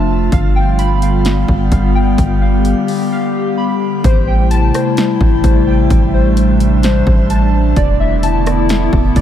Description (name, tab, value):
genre	hip hop, atmospheric cloud-rap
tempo	129 BPM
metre	4/4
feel	half-time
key	A minor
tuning	A4 = 440 Hz
part	warbly tape-like pad	sustained chords	0.0-9.2 s	C3 to G4	-15 LUFS	left 1 dB	chorus, built-in reverb, sidechain pumping
part	warbly lo-fi synth keys	arpeggios	0.0-9.2 s	C5 to B5	-21 LUFS	left 1 dB	chorus, ping-pong delay
part	long sustained 808-style bass	bass	0.0-9.2 s	E1 to A1	-14 LUFS	equal	none
part	house drum kit	drums	0.3-9.2 s	hi-hat, kick drum, rim click, snare drum	-16 LUFS	equal	none
room	little or no reverb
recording	none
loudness	-11 LUFS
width	side -10 dB against mid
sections	0.0-4.0 A section; 4.0-9.2 B section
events	break 3.1-4.0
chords	0.3 G7; 4.0 Am7; 7.8 E7sus4